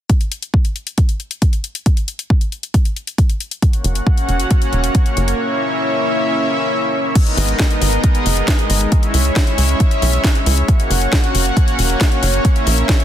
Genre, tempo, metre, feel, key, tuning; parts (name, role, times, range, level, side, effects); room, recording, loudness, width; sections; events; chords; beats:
uplifting trance; 136 BPM; 4/4; straight; G# minor; A4 = 437 Hz
electronic kick drum; drums; 0.1-13.0 s; -14 LUFS; equal; overdrive
house drum kit; drums; 0.1-13.0 s; crash cymbal, hi-hat, snare drum; -22 LUFS; left 3 dB; overdrive
supersaw pad; sustained chords; 3.6-13.0 s; G#3 to F#5; -18 LUFS; equal; sidechain pumping
tight sequencer bass; bass; 3.8-12.8 s; E1 to C#2; -17 LUFS; equal; sidechain pumping
light reverb; dense, heavily limited modern master; -14 LUFS; side -11 dB against mid
0.1-7.2 A section; 7.2-13.0 B section
0.1 N.C.; 3.6 F#; 5.4 A#dim; 7.2 G#madd9; 8.9 C#m; 10.7 F#; 12.4 A#dim
| 0.10 0.54 0.98 1.42 | 1.86 2.30 2.74 3.19 | 3.63 4.07 4.51 4.95 | 5.39 5.83 6.27 6.71 | 7.16 7.60 8.04 8.48 | 8.92 9.36 9.80 10.24 | 10.69 11.13 11.57 12.01 | 12.45 12.89